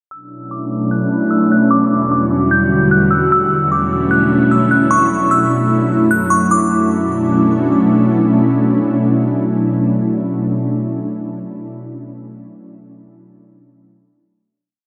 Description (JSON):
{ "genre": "hip hop, atmospheric cloud-rap", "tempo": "150 BPM", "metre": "4/4", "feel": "half-time", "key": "B minor", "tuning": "A4 = 440 Hz", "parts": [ { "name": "glassy synth bell", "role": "melody", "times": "0.1-7.7 s", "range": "C#6 to G6", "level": "-19 LUFS", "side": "equal", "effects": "chorus, low-pass filter, delay" }, { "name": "ethereal airy pad", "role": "sustained chords", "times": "0.5-10.5 s", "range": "E2 to F#4", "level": "-16 LUFS", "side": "equal", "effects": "ensemble chorus, built-in reverb, low-pass filter" } ], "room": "wet lush hall reverb, RT60 2.7 s", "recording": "dreamy mix soaked in reverb", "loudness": "-14 LUFS", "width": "mono", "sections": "0.1-6.5 breakdown; 6.5-9.7 final chord", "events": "filter sweep 0.1-6.5", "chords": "0.1 Bm11; 1.7 Em9; 3.3 Bm11; 4.9 F#m7; 6.5 Bm11" }